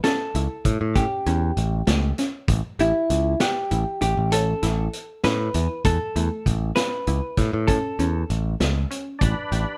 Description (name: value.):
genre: progressive instrumental, band music in an uneven meter.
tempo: 196 BPM (eighths).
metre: 11/8.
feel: straight.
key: A mixolydian.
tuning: A4 = 440 Hz.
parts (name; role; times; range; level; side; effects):
vintage hollow-body jazz guitar; melody; 0.0-8.9 s; E4 to B4; -28 LUFS; equal; none.
analog pluck; arpeggios; 0.0-9.8 s; A3 to F#5; -32 LUFS; equal; chorus, phaser.
vintage drum kit; drums; 0.0-9.7 s; hi-hat, kick drum, snare drum; -28 LUFS; equal; none.
modern bright picked electric bass; bass; 0.3-9.6 s; A1 to A2; -25 LUFS; equal; none.
overdriven tonewheel organ; accompaniment; 9.2-9.8 s; D4 to B4; -31 LUFS; equal; chorus vibrato.
room: light reverb.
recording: none.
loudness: -23 LUFS.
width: mono.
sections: 0.0-9.8 A section.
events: none.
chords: 0.0 A7; 9.2 Bm/A.